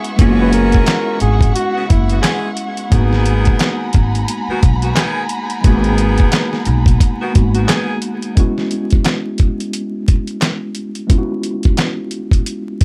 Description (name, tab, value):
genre	hip hop, boom-bap hip-hop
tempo	88 BPM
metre	4/4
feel	swing 59% on 16ths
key	unclear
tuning	A4 = 440 Hz
part	trumpet with bucket mute	melody	0.0-2.2 s	E4 to B4	-24 LUFS	equal	high-pass filter, low-pass filter, digital delay
part	tine electric piano	accompaniment	0.0-12.8 s	G#3 to F#4	-24 LUFS	equal	cassette tape, high-pass filter, low-pass filter
part	warm studio string section	sustained chords	0.0-8.3 s	B3 to C#6	-28 LUFS	equal	high-pass filter, low-pass filter
part	dusty soul sampler-style drum kit	drums	0.0-12.8 s	handclaps, hi-hat, kick drum, snare drum	-16 LUFS	equal	none
part	edgy saxophone section	stabs	0.2-8.0 s	C#3 to G#4	-26 LUFS	equal	high-pass filter, low-pass filter, digital delay
part	upright bass	bass	0.2-7.6 s	F#1 to B1	-17 LUFS	equal	none
room	light reverb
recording	vinyl crackle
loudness	-15 LUFS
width	mono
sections	0.0-8.4 A section; 8.4-12.8 B section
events	none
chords	0.0 F#7sus4; 2.9 G#m9; 8.4 F#7sus4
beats	| 0.19 0.87 1.55 2.23 | 2.92 3.60 4.28 4.96 | 5.64 6.33 7.01 7.69 | 8.37 9.05 9.73 10.42 | 11.10 11.78 12.46